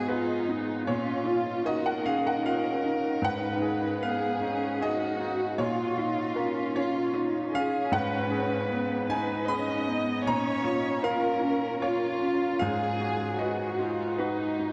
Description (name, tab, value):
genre	neoclassical piano and strings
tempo	77 BPM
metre	3/4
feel	rubato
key	G# dorian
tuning	A4 = 443 Hz
part	muted chamber violin section	melody	0.0-14.7 s	D#4 to D#5	-35 LUFS	equal	none
part	muted cello	second line	0.0-14.7 s	B3 to G#4	-34 LUFS	equal	analog delay
part	bright baby grand piano	accompaniment	0.0-14.7 s	G#2 to B5	-32 LUFS	equal	none
room	wet cathedral reverb, RT60 6.6 s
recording	dreamy mix soaked in reverb, cassette tape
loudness	-28 LUFS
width	mono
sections	0.0-14.7 A section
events	none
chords	0.0 G#m; 0.9 A#m; 3.2 G#m7; 5.6 A#m; 7.9 G#m7; 10.2 A#m; 12.6 G#m7